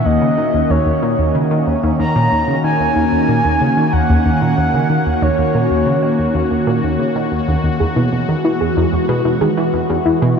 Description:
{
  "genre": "ambient, sequencer-driven space music",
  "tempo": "93 BPM",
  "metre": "4/4",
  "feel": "straight",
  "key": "Eb phrygian",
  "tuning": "A4 = 440 Hz",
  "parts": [
    { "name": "breathy flute-like synth lead", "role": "melody", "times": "0.0-6.5 s", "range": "Db5 to Bb5", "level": "-20 LUFS", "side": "equal", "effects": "wide subtle chorus, shimmer reverb, tape echo" },
    { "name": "phased analog pad", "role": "sustained chords", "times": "0.0-10.4 s", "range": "Eb3 to Gb4", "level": "-17 LUFS", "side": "equal", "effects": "phaser, chorus, shimmer reverb" },
    { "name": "tight sequenced synth", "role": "riff", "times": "0.1-10.3 s", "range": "Eb2 to E3", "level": "-18 LUFS", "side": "equal", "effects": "chorus, tape echo" },
    { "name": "soft round pluck", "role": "arpeggios", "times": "7.8-10.3 s", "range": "E4 to G#4", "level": "-20 LUFS", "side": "moving between left 3 dB and right 5 dB", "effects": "chorus, auto-pan, shimmer reverb, tape echo" }
  ],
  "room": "wet huge ambient reverb, RT60 8.5 s",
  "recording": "dark, warm production",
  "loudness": "-13 LUFS",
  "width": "side -6 dB against mid",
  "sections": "0.0-10.4 A section",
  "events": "none",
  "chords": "0.0 Ebm7; 7.8 Eadd9"
}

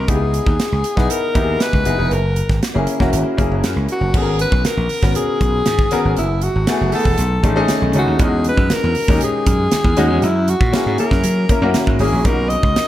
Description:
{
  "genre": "polished 1980s jazz-funk pop",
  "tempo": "118 BPM",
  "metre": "4/4",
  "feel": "straight",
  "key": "unclear",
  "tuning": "A4 = 440 Hz",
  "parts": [
    { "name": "clear alto saxophone", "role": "melody", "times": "0.0-12.9 s", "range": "E4 to D#5", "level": "-21 LUFS", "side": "left 1 dB", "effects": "analog delay" },
    { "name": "clear baby grand piano", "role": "accompaniment", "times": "0.0-12.9 s", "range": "G#3 to B4", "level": "-20 LUFS", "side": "left 2 dB", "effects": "wide subtle chorus" },
    { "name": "gritty slap bass", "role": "bass", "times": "0.0-12.7 s", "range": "E1 to F#3", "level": "-19 LUFS", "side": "equal", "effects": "overdrive" },
    { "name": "modern studio drum kit", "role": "drums", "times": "0.1-12.9 s", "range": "crash cymbal, hi-hat, kick drum, snare drum", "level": "-19 LUFS", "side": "right 1 dB", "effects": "none" },
    { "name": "congas", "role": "percussion", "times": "4.6-12.9 s", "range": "none", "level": "-31 LUFS", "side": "right 2 dB", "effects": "none" }
  ],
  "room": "light reverb, small room ambience",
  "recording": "none",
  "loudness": "-14 LUFS",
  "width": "side -13 dB against mid",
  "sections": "0.0-4.1 A section; 4.1-12.9 B section",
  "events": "none",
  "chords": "0.1 C#m7; 2.1 F#7; 4.1 G#m11; 6.2 F#m11; 7.2 B13; 8.2 Emaj13; 10.2 F#7; 12.3 Bmaj7"
}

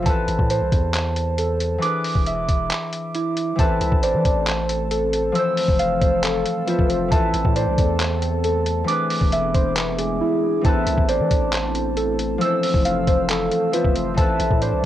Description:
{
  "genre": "hip hop, trap",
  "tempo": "136 BPM",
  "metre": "4/4",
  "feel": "half-time",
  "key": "A harmonic minor",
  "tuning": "A4 = 440 Hz",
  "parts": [
    { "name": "Celtic harp", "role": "accompaniment", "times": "0.0-14.9 s", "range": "E3 to E5", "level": "-25 LUFS", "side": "left 4 dB", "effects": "cassette tape" },
    { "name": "muted felt-like synth keys", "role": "arpeggios", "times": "0.0-14.9 s", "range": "E4 to E6", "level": "-24 LUFS", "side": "right 3 dB", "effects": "chorus, cassette tape, tape echo" },
    { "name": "long sustained 808-style bass", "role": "bass", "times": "0.0-14.8 s", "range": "E1 to E3", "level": "-26 LUFS", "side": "equal", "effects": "none" },
    { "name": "lo-fi sampler-style drum kit", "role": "drums", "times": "0.1-14.7 s", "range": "handclaps, hi-hat, kick drum", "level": "-22 LUFS", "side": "equal", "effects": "cassette tape" },
    { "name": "soft octave-layered synth lead", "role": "second line", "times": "3.6-14.9 s", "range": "G#4 to E5", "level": "-25 LUFS", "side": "left 2 dB", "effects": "chorus, phaser, cassette tape, tape echo" },
    { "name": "deep dark ambient pad", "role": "sustained chords", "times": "4.3-14.9 s", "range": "E3 to A4", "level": "-28 LUFS", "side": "right 1 dB", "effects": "chorus, built-in reverb, cassette tape" }
  ],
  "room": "light reverb",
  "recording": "home recording on cassette",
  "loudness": "-18 LUFS",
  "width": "side -12 dB against mid",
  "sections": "0.0-3.6 A section; 3.6-14.9 B section",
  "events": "break 2.7-3.6; silent gap 10.2-10.6",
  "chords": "0.1 Amadd9; 1.8 E7; 3.6 Amadd9; 5.4 Fmaj7; 7.1 Amadd9; 8.9 E7; 10.6 Amadd9; 12.4 Fmaj7; 14.2 Amadd9"
}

